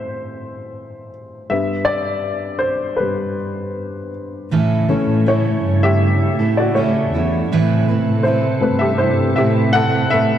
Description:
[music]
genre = pop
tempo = 80 BPM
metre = 4/4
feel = straight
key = unclear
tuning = A4 = 440 Hz
[part]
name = warm upright piano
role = accompaniment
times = 0.0-10.4 s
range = G2 to F#5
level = -19 LUFS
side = left 2 dB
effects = none
[part]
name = glassy FM pad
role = sustained chords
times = 4.5-10.4 s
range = C3 to A4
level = -22 LUFS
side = right 3 dB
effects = ensemble chorus, built-in reverb
[part]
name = fingerpicked steel-string acoustic guitar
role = arpeggios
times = 4.5-10.4 s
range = A2 to B4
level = -22 LUFS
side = right 5 dB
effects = none
[part]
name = dark studio cello section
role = bass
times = 4.5-10.4 s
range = E2 to A2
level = -19 LUFS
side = equal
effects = none
[sound]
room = moderate lush hall reverb, RT60 2.8 s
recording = dark, warm production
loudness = -15 LUFS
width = side -10 dB against mid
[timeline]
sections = 0.0-4.5 A section; 4.5-10.4 B section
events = upright piano solo 0.0-4.5, 4.5-10.4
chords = 0.0 Am7; 1.5 Gadd11; 4.5 A; 7.5 Amadd9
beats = 0.02 0.77 | 1.51 2.26 3.01 3.77 | 4.52 5.28 6.03 6.78 | 7.52 8.26 9.01 9.75

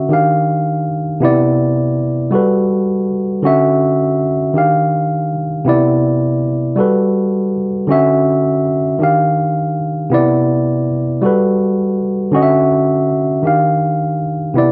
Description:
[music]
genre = R&B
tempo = 54 BPM (dotted quarters)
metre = 6/8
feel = straight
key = C lydian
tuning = A4 = 439 Hz
[part]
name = tine electric piano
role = solo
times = 0.0-14.7 s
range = C3 to F5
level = -15 LUFS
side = equal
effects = none
[sound]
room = moderate stone room reverb, RT60 1.2 s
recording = band playing live in one room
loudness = -15 LUFS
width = mono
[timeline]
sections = 0.0-14.6 A section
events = none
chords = 0.1 Ebmaj9; 1.2 Cmaj9; 2.3 Gmaj9; 3.4 Dmaj9; 4.6 Ebmaj9; 5.7 Cmaj9; 6.8 Gmaj9; 7.9 Dmaj9; 9.0 Ebmaj9; 10.1 Cmaj9; 11.2 Gmaj9; 12.3 Dmaj9; 13.4 Ebmaj9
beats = 0.11 | 1.22 2.33 | 3.44 4.55 | 5.66 6.78 | 7.89 9.00 | 10.11 11.22 | 12.33 13.44 | 14.55

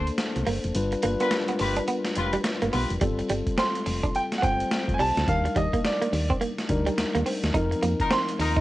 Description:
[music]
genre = R&B, new jack swing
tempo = 106 BPM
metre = 4/4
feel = swing 61% on 16ths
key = unclear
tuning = A4 = 439 Hz
[part]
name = mellow tine electric piano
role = accompaniment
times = 0.0-8.6 s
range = F3 to C5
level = -29 LUFS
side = left 2 dB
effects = cassette tape
[part]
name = warm horn section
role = stabs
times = 0.0-2.9, 8.0-8.6 s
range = Eb4 to B4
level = -29 LUFS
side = left 2 dB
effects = cassette tape
[part]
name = solid FM bass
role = bass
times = 0.0-8.6 s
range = F1 to F2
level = -28 LUFS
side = equal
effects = none
[part]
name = boom bap sampler-style drum kit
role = drums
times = 0.1-8.6 s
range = hi-hat, kick drum, snare drum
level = -29 LUFS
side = equal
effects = cassette tape
[part]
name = direct-recorded clean electric guitar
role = riff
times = 0.5-8.6 s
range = G3 to Eb4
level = -28 LUFS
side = right 3 dB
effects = lush chorus, cassette tape
[part]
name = clear concert grand piano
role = melody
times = 3.6-8.6 s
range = D5 to C6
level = -27 LUFS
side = right 1 dB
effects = cassette tape
[sound]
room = moderate booth ambience, RT60 0.2 s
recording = home recording on cassette, nothing above 10.4 kHz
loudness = -23 LUFS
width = side -16 dB against mid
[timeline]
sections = 0.0-3.0 A section; 3.0-8.6 B section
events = kick muted 0.8-3.0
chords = 0.0 Bbmaj9; 0.8 G7; 3.0 G9sus4; 5.3 Ebmaj7; 7.5 F7sus4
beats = 0.18 | 0.75 1.32 1.88 2.45 | 3.02 3.58 4.15 4.71 | 5.28 5.84 6.41 6.98 | 7.54 8.11

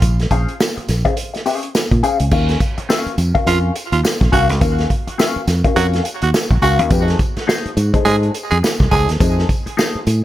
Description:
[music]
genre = funk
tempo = 104 BPM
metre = 4/4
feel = swing 60% on 16ths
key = unclear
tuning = A4 = 440 Hz
[part]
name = fingered electric bass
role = bass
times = 0.0-10.2 s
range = Bb1 to Bb2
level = -17 LUFS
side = equal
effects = none
[part]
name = vintage drum kit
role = drums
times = 0.0-10.2 s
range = crash cymbal, hi-hat, kick drum, snare drum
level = -18 LUFS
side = equal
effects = none
[part]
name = tambourine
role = percussion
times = 0.0-10.2 s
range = none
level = -33 LUFS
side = left 3 dB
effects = none
[part]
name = mellow electric guitar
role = accompaniment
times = 0.3-10.1 s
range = A3 to F5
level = -21 LUFS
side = left 5 dB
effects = wah
[part]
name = growling tenor saxophone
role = second line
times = 3.5-9.1 s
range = F4 to G#4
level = -21 LUFS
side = right 4 dB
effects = tape echo
[sound]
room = light reverb, small room ambience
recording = none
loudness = -14 LUFS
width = side -14 dB against mid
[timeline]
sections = 0.0-2.3 A section; 2.3-10.2 B section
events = none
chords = 0.0 Bbm9; 2.3 Ebm9; 6.9 F7#9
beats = | 0.02 0.60 1.17 1.75 | 2.32 2.90 3.47 4.04 | 4.62 5.19 5.76 6.34 | 6.91 7.49 8.06 8.63 | 9.21 9.78

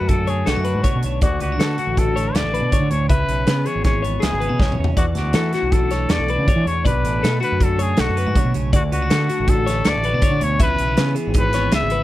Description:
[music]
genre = math rock and midwest emo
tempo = 160 BPM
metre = 5/4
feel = straight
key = D lydian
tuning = A4 = 440 Hz
[part]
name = clear trumpet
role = melody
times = 0.0-12.0 s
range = F#4 to E5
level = -24 LUFS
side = left 2 dB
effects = slapback echo
[part]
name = twelve-string electric guitar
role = accompaniment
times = 0.0-12.0 s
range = D2 to F#4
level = -27 LUFS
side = right 6 dB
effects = none
[part]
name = twelve-string electric guitar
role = arpeggios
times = 0.0-12.0 s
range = F#4 to E5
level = -25 LUFS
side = left 7 dB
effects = none
[part]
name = growling fingered electric bass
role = bass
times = 0.0-12.0 s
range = G#1 to E3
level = -22 LUFS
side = equal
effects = overdrive
[part]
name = modern studio drum kit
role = drums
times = 0.1-12.0 s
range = hi-hat, kick drum, snare drum, toms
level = -21 LUFS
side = equal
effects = none
[sound]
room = little or no reverb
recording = none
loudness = -16 LUFS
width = side -15 dB against mid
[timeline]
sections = 0.0-12.0 A section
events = drum fill 4.6-5.0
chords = 0.0 Bm7; 1.2 Dmaj7; 3.1 C#m7; 5.0 E9sus4; 6.9 Bm7; 8.7 Dmaj7; 10.6 C#m7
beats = 0.09 0.47 0.84 | 1.22 1.60 1.97 2.35 2.73 | 3.10 3.48 3.85 4.23 4.60 | 4.98 5.35 5.73 6.11 6.48 | 6.86 7.23 7.61 7.98 8.36 | 8.73 9.10 9.48 9.85 10.23 | 10.60 10.98 11.35 11.72

